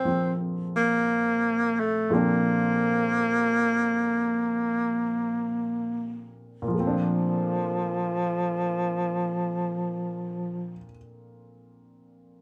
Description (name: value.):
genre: jazz ballad.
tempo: free time.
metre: none.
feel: none.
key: Bb major.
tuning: A4 = 440 Hz.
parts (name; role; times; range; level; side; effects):
breathy tenor saxophone; melody; 0.0-10.8 s; F3 to C4; -27 LUFS; equal; none.
warm upright piano; accompaniment; 0.0-12.4 s; Bb2 to A4; -33 LUFS; equal; none.
room: moderate studio ambience, RT60 0.5 s.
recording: none.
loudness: -26 LUFS.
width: mono.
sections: 0.0-6.7 A section; 6.7-11.8 B section.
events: slowing down 0.0-6.7.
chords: 0.0 Bbmaj7.